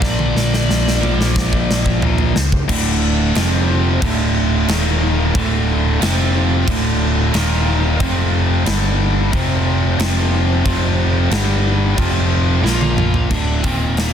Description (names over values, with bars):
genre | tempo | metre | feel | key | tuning
hard rock | 90 BPM | 4/4 | straight | D minor | A4 = 442 Hz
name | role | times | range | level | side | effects
biting lead guitar | melody | 0.0-2.0, 12.6-14.1 s | Bb3 to D5 | -25 LUFS | right 1 dB | overdrive, tape echo
overdriven tonewheel organ | sustained chords | 0.0-13.3 s | F3 to F5 | -32 LUFS | left 1 dB | none
crunchy overdriven guitar | riff | 0.0-14.1 s | D2 to Bb3 | -22 LUFS | right 12 dB | none
high-gain distorted guitar | riff | 0.0-13.3 s | D2 to Bb3 | -25 LUFS | equal | distortion
tight distorted guitar | riff | 0.0-14.1 s | D2 to Bb3 | -22 LUFS | left 13 dB | distortion
picked electric bass | bass | 0.0-14.1 s | D1 to C#2 | -18 LUFS | equal | none
huge arena drum kit | drums | 0.0-14.1 s | crash cymbal, hi-hat, kick drum, snare drum, toms | -20 LUFS | equal | none
room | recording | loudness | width
little or no reverb | dense, heavily limited modern master | -14 LUFS | side -8 dB against mid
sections
0.0-2.7 A section; 2.7-13.3 B section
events
drum fill 0.0-2.7, 12.6-13.3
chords
0.0 Bb; 2.7 D5; 3.3 F5; 4.0 D5; 4.7 Eb5; 5.3 D5; 6.0 F5; 6.7 D5; 7.3 Eb5; 8.0 F5; 8.7 G5; 9.3 F5; 11.3 G5; 12.0 F5; 12.6 Bb5; 13.3 D5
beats
| 0.01 0.68 1.34 2.01 | 2.68 3.35 4.01 4.68 | 5.34 6.01 6.67 7.34 | 8.00 8.66 9.32 9.99 | 10.65 11.31 11.98 12.64 | 13.30 13.97